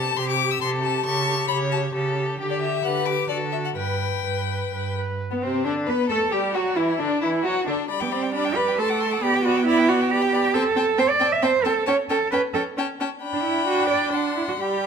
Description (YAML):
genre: quick classical-period movement for string quartet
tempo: 134 BPM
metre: 3/4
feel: rubato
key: G major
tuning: A4 = 440 Hz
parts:
  - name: clear violin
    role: melody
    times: 0.0-14.9 s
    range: B3 to E6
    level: -28 LUFS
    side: left 10 dB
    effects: none
  - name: clear violin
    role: second line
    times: 0.0-14.9 s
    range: B3 to A5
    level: -29 LUFS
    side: left 6 dB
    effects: none
  - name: rich viola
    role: accompaniment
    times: 0.0-14.9 s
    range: C3 to B4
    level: -27 LUFS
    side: right 1 dB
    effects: none
  - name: rich cello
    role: bass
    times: 0.0-14.9 s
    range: G2 to E5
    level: -23 LUFS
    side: right 4 dB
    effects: none
room: moderate recital hall reverb, RT60 1.6 s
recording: none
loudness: -20 LUFS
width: side -6 dB against mid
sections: 0.0-5.2 A section; 5.2-14.9 B section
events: none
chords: 0.0 Am7/C; 1.1 A7/C#; 2.4 G/D; 3.3 D; 3.8 G; 5.2 Bm; 6.1 Gsus2; 6.6 D; 7.9 G; 8.8 D7/A; 9.2 G/B; 10.6 Am7/C; 11.9 A7/C#; 13.2 G/D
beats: 0.18 0.62 | 1.06 1.50 1.95 | 2.40 2.84 3.30 | 3.77 4.25 4.72 | 5.20 5.66 6.11 | 6.55 7.00 7.45 | 7.90 8.34 8.78 | 9.22 9.67 10.11 | 10.55 10.99 11.44 | 11.88 12.33 12.78 | 13.22 13.68 14.14 | 14.61